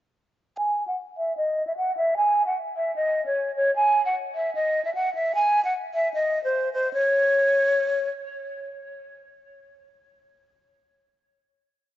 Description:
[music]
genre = hip hop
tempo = 151 BPM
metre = 4/4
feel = half-time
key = C# harmonic minor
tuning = A4 = 440 Hz
[part]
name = breathy hollow jazz flute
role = solo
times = 0.6-8.1 s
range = B#4 to G#5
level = -22 LUFS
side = equal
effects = low-pass filter
[sound]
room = moderate lush hall reverb, RT60 2.6 s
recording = nothing above 7.6 kHz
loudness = -21 LUFS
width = side -13 dB against mid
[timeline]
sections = 0.6-6.9 breakdown; 6.9-10.1 final note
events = filter sweep on flute 0.6-6.9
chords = none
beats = | 0.58 0.97 1.37 1.77 | 2.17 2.56 2.96 3.36 | 3.75 4.15 4.55 4.95 | 5.34 5.74 6.14 6.54 | 6.93 7.33 7.73

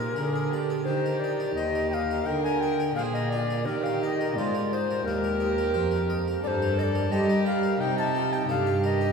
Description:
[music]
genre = classical, baroque-style sonata movement with continuo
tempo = 87 BPM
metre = 4/4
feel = rubato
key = Eb major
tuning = A4 = 440 Hz
[part]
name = tenor recorder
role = melody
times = 0.0-9.1 s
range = Bb4 to A5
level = -29 LUFS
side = left 4 dB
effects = none
[part]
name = warm violin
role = second line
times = 0.0-9.1 s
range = Eb4 to Bb4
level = -30 LUFS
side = right 4 dB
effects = none
[part]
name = harpsichord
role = accompaniment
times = 0.0-9.1 s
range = Eb2 to Eb5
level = -34 LUFS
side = left 1 dB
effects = none
[part]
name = warm cello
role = bass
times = 0.0-9.1 s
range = Eb2 to G3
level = -28 LUFS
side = right 1 dB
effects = none
[sound]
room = wet church reverb, RT60 3.3 s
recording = heard from further back in the room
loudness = -24 LUFS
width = side -5 dB against mid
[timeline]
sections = 0.0-9.1 A section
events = none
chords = 0.0 Bb7; 0.9 Eb; 2.3 Bb7/D; 3.7 Eb; 6.4 Gm; 7.8 Cm7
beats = 0.17 | 0.87 1.57 2.27 2.97 | 3.66 4.36 5.05 5.75 | 6.43 7.12 7.81 8.50

